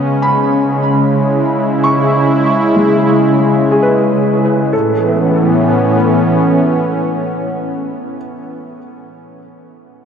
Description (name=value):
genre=ambient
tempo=74 BPM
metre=4/4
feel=straight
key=A major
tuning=A4 = 439 Hz
part: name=warm analog pad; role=sustained chords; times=0.0-8.5 s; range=A2 to E4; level=-12 LUFS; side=equal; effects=chorus, tremolo
part: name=felt-muted upright piano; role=arpeggios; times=0.2-10.1 s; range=G#3 to C#6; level=-17 LUFS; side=equal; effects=tape echo
room=wet huge ambient reverb, RT60 7.1 s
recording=dreamy mix soaked in reverb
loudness=-10 LUFS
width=side -7 dB against mid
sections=0.0-4.7 A section; 4.7-7.9 B section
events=none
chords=0.0 C#m; 4.7 A